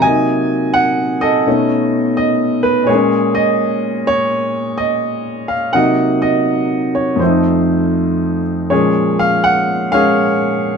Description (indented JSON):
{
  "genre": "solo jazz",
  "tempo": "84 BPM",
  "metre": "4/4",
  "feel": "swing 66% on 8ths, rubato",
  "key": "Bb minor",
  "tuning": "A4 = 439 Hz",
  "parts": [
    { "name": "warm baby grand piano", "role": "solo", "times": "0.0-10.8 s", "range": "F2 to Ab5", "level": "-13 LUFS", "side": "equal", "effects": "none" }
  ],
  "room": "light reverb",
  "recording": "close, detailed microphones",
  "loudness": "-13 LUFS",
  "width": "side -6 dB against mid",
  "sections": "0.0-8.7 A section; 8.7-10.8 B section",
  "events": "none",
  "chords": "0.0 Cm7b5; 1.5 B9; 2.9 Bbm7; 5.7 Cm7b5; 7.2 F7; 8.7 Bbm7"
}